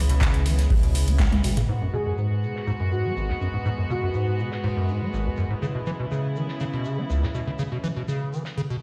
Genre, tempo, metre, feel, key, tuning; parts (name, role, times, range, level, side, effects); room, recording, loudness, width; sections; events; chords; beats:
acid house; 122 BPM; 4/4; straight; G# minor; A4 = 441 Hz
warm studio string section; sustained chords; 0.0-8.5 s; G#2 to F#4; -34 LUFS; equal; sidechain pumping
warm sub bass; bass; 0.0-1.6 s; G#1 to C#2; -24 LUFS; equal; sidechain pumping
acid bass, square; riff; 0.1-8.8 s; G#1 to C#4; -29 LUFS; equal; analog chorus, sidechain pumping, delay
booming analog drum machine; drums; 0.1-1.7 s; handclaps, hi-hat, toms; -30 LUFS; equal
electronic kick drum; drums; 0.2-1.3 s; -24 LUFS; equal
gated 80s drum kit; drums; 0.2-8.6 s; hi-hat, shaker, snare drum; -45 LUFS; equal; sidechain pumping on hats, high-pass filter on hats, low-pass filter on hats, high-pass filter on snare, low-pass filter on snare, sidechain pumping on perc, high-pass filter on perc, low-pass filter on perc, high-pass filter on room, low-pass filter on room
breathy flute-like synth lead; melody; 1.9-4.4 s; F#4 to G#4; -35 LUFS; equal; subtle chorus, cassette tape, tape echo
light reverb, studio reverb; played on a big sound system in a bare room, large studio reverb; -25 LUFS; mono
0.0-1.7 A section; 1.7-8.8 B section
drum fill 1.2-1.7; band accent 1.2
0.0 C#m7; 1.7 G#m7; 5.6 C#m7
0.21 0.70 1.20 | 1.69 2.18 2.67 3.16 | 3.65 4.15 4.64 5.13 | 5.62 6.11 6.61 7.10 | 7.59 8.08 8.57